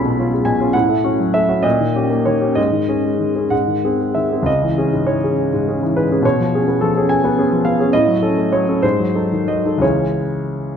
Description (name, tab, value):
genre	classical, romantic character piece for solo piano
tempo	57-73 BPM (dotted quarters)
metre	6/8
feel	rubato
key	C# minor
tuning	A4 = 436 Hz
part	warm grand piano	solo	0.0-10.8 s	B1 to B5	-15 LUFS	equal	none
room	moderate recital hall reverb, RT60 1.4 s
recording	none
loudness	-14 LUFS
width	side -7 dB against mid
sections	0.0-10.8 A section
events	none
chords	0.0 C#7/B; 0.7 F#m/A; 1.6 D#7/A#; 2.6 G#sus4; 3.5 G#; 4.5 C#m; 6.2 C#7/B; 7.9 F#m/A; 8.8 G#7b9; 9.8 C#m